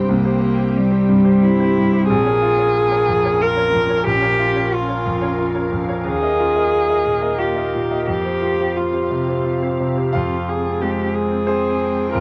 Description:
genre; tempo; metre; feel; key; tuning
neoclassical piano and strings; 90 BPM; 3/4; rubato; F minor; A4 = 440 Hz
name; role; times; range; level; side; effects
muted cello; second line; 0.0-12.2 s; G3 to Bb4; -21 LUFS; equal; none
bright concert grand piano; accompaniment; 0.0-12.2 s; Bb1 to F5; -22 LUFS; equal; none
evolving wavetable pad; sustained chords; 0.0-12.2 s; Ab3 to G5; -30 LUFS; equal; ensemble chorus, built-in reverb
room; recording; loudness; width
moderate studio ambience, RT60 0.5 s; dark, warm production; -18 LUFS; mono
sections
0.0-10.1 A section; 10.1-12.2 A section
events
none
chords
0.0 C; 2.1 Bbm7; 6.1 Ebsus2; 8.1 Fsus2; 10.1 Fmadd9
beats
| 0.09 0.75 1.43 | 2.09 2.75 3.40 | 4.06 4.72 5.39 | 6.05 6.72 7.38 | 8.07 8.76 9.44 | 10.12 10.79 11.46 | 12.12

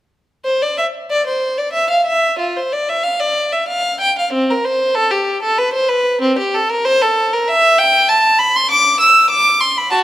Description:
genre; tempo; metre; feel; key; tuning
classical, baroque-style suite movement for unaccompanied violin; 88-100 BPM; 3/4; rubato; unclear; A4 = 441 Hz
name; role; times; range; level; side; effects
warm violin; solo; 0.4-10.0 s; C4 to E6; -12 LUFS; equal; none
room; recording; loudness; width
moderate recital hall reverb, RT60 1.7 s; none; -12 LUFS; side -14 dB against mid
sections
0.4-10.0 A section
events
none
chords
none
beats
| 0.44 1.09 1.72 | 2.38 3.03 3.67 | 4.31 4.94 5.57 | 6.21 6.86 7.48 | 8.10 8.71 9.31 | 9.92

